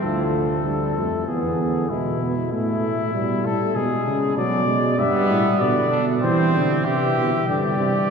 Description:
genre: classical, imitative canzona for brass ensemble.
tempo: 96 BPM.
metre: 4/4.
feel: straight.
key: C major from 5.0 s.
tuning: A4 = 439 Hz.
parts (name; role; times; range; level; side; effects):
mellow trumpet; melody; 0.0-8.1 s; E4 to E5; -24 LUFS; left 5 dB; none.
dark trombone; accompaniment; 0.0-7.9 s; C3 to B3; -24 LUFS; right 1 dB; none.
mellow tuba; bass; 0.0-8.1 s; D2 to E3; -23 LUFS; right 2 dB; none.
clear trumpet; second line; 5.0-8.1 s; B3 to G4; -27 LUFS; right 3 dB; none.
room: wet cathedral reverb, RT60 5.3 s.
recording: heard from further back in the room.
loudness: -19 LUFS.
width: side -6 dB against mid.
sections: 0.0-8.1 A section.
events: none.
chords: 0.0 Dm; 1.3 E; 2.5 A5; 3.8 G#dim/B; 5.0 G; 6.2 C; 7.5 Gsus4.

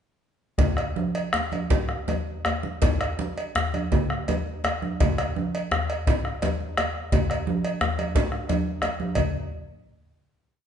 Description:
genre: west african traditional, West African drum ensemble.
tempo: 107-125 BPM (dotted quarters).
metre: 12/8.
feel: straight.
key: none.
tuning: none.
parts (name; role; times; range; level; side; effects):
bombo; percussion; 0.6-9.3 s; none; -26 LUFS; left 1 dB; none.
congas; percussion; 0.6-9.3 s; none; -28 LUFS; right 4 dB; none.
cowbell; percussion; 0.6-9.3 s; none; -32 LUFS; right 2 dB; none.
djembe; percussion; 0.6-9.3 s; none; -30 LUFS; left 4 dB; none.
room: wet large studio reverb, RT60 1.1 s.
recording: band playing live in one room, nothing above 10.7 kHz.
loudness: -23 LUFS.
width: side -8 dB against mid.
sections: 0.6-9.2 A section; 9.2-10.7 final hit.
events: speeding up 0.6-10.7.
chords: none.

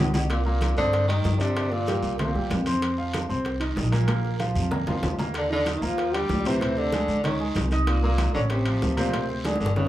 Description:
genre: Afro-Cuban jazz.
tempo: 190 BPM.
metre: 4/4.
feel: straight.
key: C minor.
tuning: A4 = 440 Hz.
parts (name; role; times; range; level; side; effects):
warm grand piano; accompaniment; 0.0-9.9 s; Bb2 to Eb6; -29 LUFS; left 1 dB; none.
upright bass; bass; 0.0-9.9 s; G1 to G2; -26 LUFS; equal; none.
congas; percussion; 0.1-9.9 s; none; -31 LUFS; equal; none.
cowbell and bongos; percussion; 0.1-9.8 s; none; -36 LUFS; left 4 dB; none.
guiro; percussion; 0.1-9.9 s; none; -41 LUFS; left 4 dB; none.
timbales and agogo bells; percussion; 0.2-9.8 s; none; -34 LUFS; right 2 dB; none.
trombone with bucket mute; melody; 0.3-2.6, 5.4-9.9 s; Bb3 to G4; -28 LUFS; right 1 dB; none.
bright tenor saxophone; second line; 0.3-2.6, 5.4-9.9 s; Bb2 to G3; -31 LUFS; right 1 dB; none.
room: moderate studio reverb, RT60 0.5 s.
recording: small room ambience.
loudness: -22 LUFS.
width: side -14 dB against mid.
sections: 0.3-9.9 A section.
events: drum fill 0.0, 4.1-5.4, 9.4-9.9.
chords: 0.3 Cm9; 1.6 Gm; 2.2 C7; 2.8 F5; 4.1 Bb5; 5.4 Ebmaj7; 6.6 Eaug7; 7.2 Dbsus2; 7.9 Cm7; 8.5 Aaug; 9.1 Bb13.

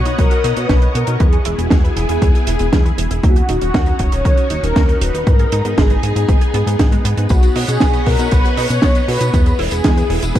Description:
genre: italo disco.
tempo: 118 BPM.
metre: 4/4.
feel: straight.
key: B major.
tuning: A4 = 439 Hz.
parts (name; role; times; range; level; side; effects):
mellow synth brass; melody; 0.0-10.4 s; E4 to C#5; -21 LUFS; left 1 dB; chorus, digital delay.
string machine, full ensemble; sustained chords; 0.0-10.4 s; B3 to F#5; -23 LUFS; equal; ensemble chorus.
analog pluck; arpeggios; 0.0-10.4 s; G#3 to B4; -28 LUFS; right 4 dB; chorus, digital delay.
chorused synth bass; bass; 0.0-10.4 s; D#1 to B2; -18 LUFS; equal; none.
compact cocktail drum kit; drums; 0.1-10.4 s; hi-hat, snare drum, tambourine; -22 LUFS; right 2 dB; none.
electronic kick drum; drums; 0.2-10.4 s; none; -14 LUFS; equal; none.
room: light reverb.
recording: dark, warm production.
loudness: -12 LUFS.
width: side -12 dB against mid.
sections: 0.0-10.4 A section.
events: none.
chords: 0.0 Badd9; 1.2 E; 3.2 D#m7; 5.3 G#m; 7.3 Badd9; 9.3 E.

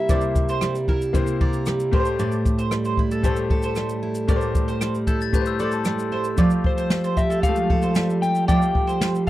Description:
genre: acoustic pop.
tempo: 114 BPM.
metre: 4/4.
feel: straight.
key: unclear.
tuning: A4 = 440 Hz.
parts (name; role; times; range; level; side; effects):
electric slide guitar; melody; 0.0-0.8, 6.7-9.3 s; C5 to G5; -25 LUFS; left 3 dB; none.
bright concert grand piano; accompaniment; 0.0-9.3 s; Ab3 to F5; -30 LUFS; left 8 dB; none.
picked steel-string acoustic guitar; accompaniment; 0.0-9.3 s; A2 to Bb4; -23 LUFS; right 2 dB; none.
mandolin; arpeggios; 0.1-9.3 s; A4 to D5; -31 LUFS; right 5 dB; none.
jazz brush drum kit; drums; 0.1-9.3 s; kick drum, rim click, shaker, snare drum; -23 LUFS; equal; none.
glockenspiel with soft plastic mallets; second line; 5.1-6.4 s; A5 to A6; -34 LUFS; left 10 dB; none.
room: little or no reverb.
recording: dry, close 1970s-style studio recording.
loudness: -19 LUFS.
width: side -15 dB against mid.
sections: 0.0-9.3 A section.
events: none.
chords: 0.0 C7; 1.9 Am7; 6.4 Fadd9.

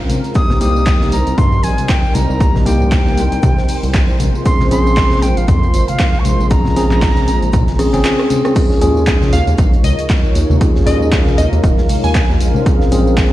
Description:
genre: deep house.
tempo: 117 BPM.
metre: 4/4.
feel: swing 57% on 16ths.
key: unclear.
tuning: A4 = 441 Hz.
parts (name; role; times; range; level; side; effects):
breathy bright concert flute; melody; 0.0-8.0 s; F5 to Eb6; -22 LUFS; right 1 dB; analog delay.
warm analog pad; sustained chords; 0.0-13.3 s; G3 to Db5; -23 LUFS; equal; chorus, sidechain pumping.
round analog bass; bass; 0.0-13.3 s; Eb1 to C3; -16 LUFS; equal; sidechain pumping.
gated 80s drum kit; drums; 0.1-13.3 s; hi-hat, shaker, snare drum; -32 LUFS; left 1 dB; sidechain pumping on hats, high-pass filter on hats, high-pass filter on snare, sidechain pumping on perc, high-pass filter on perc, high-pass filter on room.
punchy analog drum machine; drums; 0.1-13.3 s; crash cymbal, handclaps, hi-hat, rim click, tambourine; -25 LUFS; equal; overdrive.
congas; percussion; 0.1-13.0 s; none; -23 LUFS; left 2 dB; sidechain pumping on perc.
bell-like tine electric piano; stabs; 0.3-13.3 s; Bb3 to Ab4; -18 LUFS; equal; sidechain pumping, analog delay.
electronic kick drum; drums; 0.4-13.3 s; none; -14 LUFS; equal; overdrive.
warbly tape-like pad; texture; 9.5-13.3 s; Eb4 to C6; -24 LUFS; equal; chorus, built-in reverb, sidechain pumping.
glassy wavetable pluck; melody; 9.3-12.5 s; Eb5 to Ab5; -23 LUFS; equal; chorus, analog delay.
room: small room ambience.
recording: played on a big sound system in a bare room, cassette tape, large studio reverb.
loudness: -11 LUFS.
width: side -15 dB against mid.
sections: 0.0-8.6 A section; 8.6-13.3 B section.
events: drum fill 7.8-8.6; drop 8.6-13.3.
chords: 0.4 Cm7; 4.2 Bbm9; 8.6 Eb9sus4; 12.4 Bbm9.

